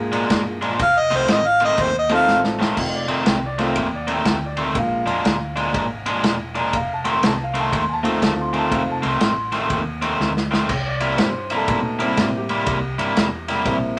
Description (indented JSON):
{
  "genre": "electric blues shuffle",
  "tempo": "121 BPM",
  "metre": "4/4",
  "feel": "swing 64% on 8ths",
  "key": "F mixolydian",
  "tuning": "A4 = 440 Hz",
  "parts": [
    { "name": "dark grand piano", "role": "accompaniment", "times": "0.0-14.0 s", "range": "Gb3 to C6", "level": "-27 LUFS", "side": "equal", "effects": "none" },
    { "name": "vintage muted fingered electric bass", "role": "bass", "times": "0.0-14.0 s", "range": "E1 to Bb2", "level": "-33 LUFS", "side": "equal", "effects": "none" },
    { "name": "cranked stack guitar", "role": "riff", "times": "0.1-13.8 s", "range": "F2 to E4", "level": "-25 LUFS", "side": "equal", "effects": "overdrive" },
    { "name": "vintage drum kit", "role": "drums", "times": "0.1-13.8 s", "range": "crash cymbal, kick drum, ride cymbal, snare drum", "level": "-26 LUFS", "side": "equal", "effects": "none" },
    { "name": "clear harmonica", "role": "melody", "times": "0.8-2.4 s", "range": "C5 to F5", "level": "-19 LUFS", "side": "equal", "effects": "overdrive" }
  ],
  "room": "moderate studio reverb, RT60 0.7 s",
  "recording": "none",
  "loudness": "-20 LUFS",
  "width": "mono",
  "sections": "0.0-2.8 A section; 2.8-14.0 A section",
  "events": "harmonica solo 0.0-2.8; drum fill 2.3-2.8, 10.2-10.7",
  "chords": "0.0 Bb7; 0.8 F7; 4.8 Bb7; 6.7 F7; 10.7 C7"
}